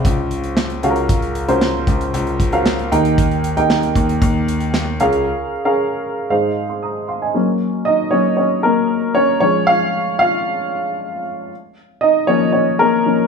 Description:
piano-driven pop; 115 BPM; 4/4; straight; A4 = 439 Hz
dark upright piano; accompaniment; 0.0-13.3 s; Ab2 to Eb6; -16 LUFS; equal
clear concert grand piano; bass; 0.0-5.2 s; Db2 to Eb2; -20 LUFS; left 1 dB
modern studio drum kit; drums; 0.0-5.2 s; handclaps, hi-hat, kick drum, snare drum; -19 LUFS; equal
moderate large studio reverb, RT60 1.0 s; band playing live in one room; -15 LUFS; side -5 dB against mid
0.0-7.3 A section; 7.3-13.3 B section
break 5.3-7.3; upright piano solo 7.3-13.3
0.0 Dbmaj7; 0.8 Gbmaj7/Db; 2.9 Eb; 5.0 Bbm7/Db; 6.3 Ab6; 7.3 Gb; 9.4 Db/F; 11.5 Bbm

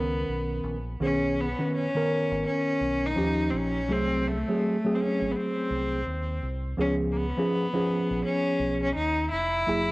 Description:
hip hop, jazz-hop; 83 BPM; 4/4; swing 64% on 16ths; B major; A4 = 440 Hz
clear cello; melody; 0.0-9.9 s; A3 to E4; -28 LUFS; left 1 dB; cassette tape, analog delay
mellow tine electric piano; accompaniment; 0.0-9.9 s; D#3 to B4; -27 LUFS; equal; medium stereo tremolo
deep dub fingered electric bass; bass; 0.0-9.9 s; E#1 to D#2; -32 LUFS; equal; transformer saturation
moderate spring reverb, RT60 1.7 s, small room ambience; home recording on cassette; -24 LUFS; side -22 dB against mid
0.0-1.0 A section; 1.0-9.9 A section
0.0 Bmaj9; 1.0 B69; 3.2 D#9; 3.9 G#7b9; 6.8 C#7

